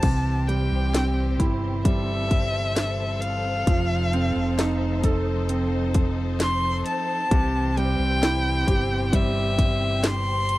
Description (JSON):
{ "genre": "pop ballad", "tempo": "66 BPM", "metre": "4/4", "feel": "straight", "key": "unclear", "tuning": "A4 = 440 Hz", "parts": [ { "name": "rich violin", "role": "melody", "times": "0.0-10.6 s", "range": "E5 to C6", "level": "-27 LUFS", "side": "left 1 dB", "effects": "none" }, { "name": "clear concert grand piano", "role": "accompaniment", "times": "0.0-10.6 s", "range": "C3 to A4", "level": "-27 LUFS", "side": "right 3 dB", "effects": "none" }, { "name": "warm studio string section", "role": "sustained chords", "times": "0.0-10.6 s", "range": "E3 to C5", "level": "-32 LUFS", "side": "left 3 dB", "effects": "none" }, { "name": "fingered electric bass", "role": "bass", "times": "0.0-10.6 s", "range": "F1 to C2", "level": "-26 LUFS", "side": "left 1 dB", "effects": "none" }, { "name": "house drum kit", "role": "drums", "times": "0.0-10.6 s", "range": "crash cymbal, hi-hat, kick drum, snare drum", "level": "-22 LUFS", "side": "equal", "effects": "none" } ], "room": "little or no reverb", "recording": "dry, close 1970s-style studio recording", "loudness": "-21 LUFS", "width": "side -17 dB against mid", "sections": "0.0-10.6 A section", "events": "none", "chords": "0.0 C; 3.7 F7; 7.3 C" }